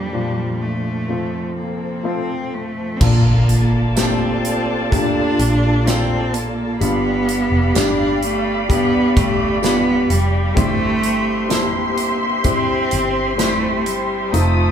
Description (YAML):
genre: pop ballad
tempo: 64 BPM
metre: 4/4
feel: straight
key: Bb major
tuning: A4 = 440 Hz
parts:
  - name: rich cello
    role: melody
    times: 0.0-14.7 s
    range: G3 to D4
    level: -21 LUFS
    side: right 1 dB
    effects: none
  - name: warm baby grand piano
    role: accompaniment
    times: 0.0-14.7 s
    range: F1 to C5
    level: -22 LUFS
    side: left 2 dB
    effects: none
  - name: muted studio string section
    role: sustained chords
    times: 0.0-14.7 s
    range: F2 to Eb6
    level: -23 LUFS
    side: equal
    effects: none
  - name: vintage muted fingered electric bass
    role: bass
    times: 3.0-14.7 s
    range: F1 to Bb1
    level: -20 LUFS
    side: equal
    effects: none
  - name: modern studio drum kit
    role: drums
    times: 3.0-14.6 s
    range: crash cymbal, hi-hat, kick drum, snare drum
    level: -22 LUFS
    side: equal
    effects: none
  - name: impact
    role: sound effects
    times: 3.1-6.8 s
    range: none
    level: -28 LUFS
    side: equal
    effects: none
  - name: tambourine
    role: percussion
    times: 4.0-13.6 s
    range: none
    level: -32 LUFS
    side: right 8 dB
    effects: none
room: wet large studio reverb, RT60 1.1 s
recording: band playing live in one room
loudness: -15 LUFS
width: side -8 dB against mid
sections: 0.0-3.0 A section; 3.0-14.7 B section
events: impact 3.0-6.8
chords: 0.0 Bb/F; 1.1 F; 3.0 Bbmaj7; 6.8 G7; 10.6 C/G